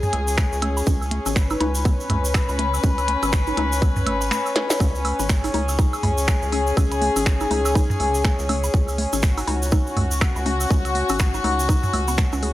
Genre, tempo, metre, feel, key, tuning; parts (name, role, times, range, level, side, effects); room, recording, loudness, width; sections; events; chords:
minimal techno; 122 BPM; 4/4; swing 59% on 16ths; A4 = 440 Hz
electronic toms, congas and woodblock; percussion; 0.0-12.5 s; -28 LUFS; right 2 dB
tube shaker; percussion; 0.0-12.4 s; -32 LUFS; right 2 dB
dark chamber string section; texture; 0.0-12.5 s; C#4 to B4; -24 LUFS; left 2 dB; sidechain pumping
rubbery square bass; bass; 0.1-12.5 s; G#1 to C#2; -26 LUFS; equal; sidechain pumping
minimal click drum kit; drums; 0.1-12.5 s; finger snaps, hi-hat, snare drum; -27 LUFS; equal
electronic kick drum; drums; 0.4-12.3 s; -20 LUFS; equal
mallet-like synth pluck; riff; 0.6-12.5 s; B3 to C#5; -29 LUFS; left 1 dB; analog chorus, sidechain pumping, tape echo
little or no reverb; dry, gritty hardware recording, transformer saturation; -18 LUFS; side -15 dB against mid
0.0-12.5 A section
drum fill 4.6
0.0 C#5